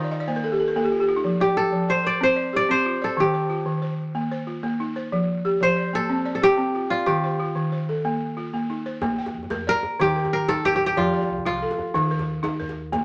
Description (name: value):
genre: west african traditional, West African string and xylophone music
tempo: 123 BPM (dotted quarters)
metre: 12/8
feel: straight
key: unclear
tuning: A4 = 440 Hz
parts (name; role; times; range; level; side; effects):
- kora; melody; 0.0-13.0 s; Eb4 to D5; -24 LUFS; equal; none
- balafon; arpeggios; 0.0-13.0 s; Eb3 to G5; -27 LUFS; equal; none
- upright bass; bass; 9.0-13.0 s; Bb1 to F2; -41 LUFS; equal; none
- djembe; percussion; 9.0-13.0 s; none; -37 LUFS; equal; none
room: moderate studio reverb, RT60 0.6 s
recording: none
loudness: -23 LUFS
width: mono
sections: 0.0-9.0 A section; 9.0-13.0 B section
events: balafon fill 0.0-1.2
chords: 0.0 Eb5; 1.2 F; 3.2 Eb; 5.1 F; 7.1 Eb; 9.0 Bb; 10.0 Eb; 11.0 F; 11.9 Eb5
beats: 0.28 0.76 | 1.25 1.73 2.21 2.70 | 3.18 3.67 4.15 4.64 | 5.12 5.61 6.10 6.58 | 7.07 7.56 8.04 8.53 | 9.02 9.51 10.00 10.49 | 10.97 11.46 11.95 12.44 | 12.93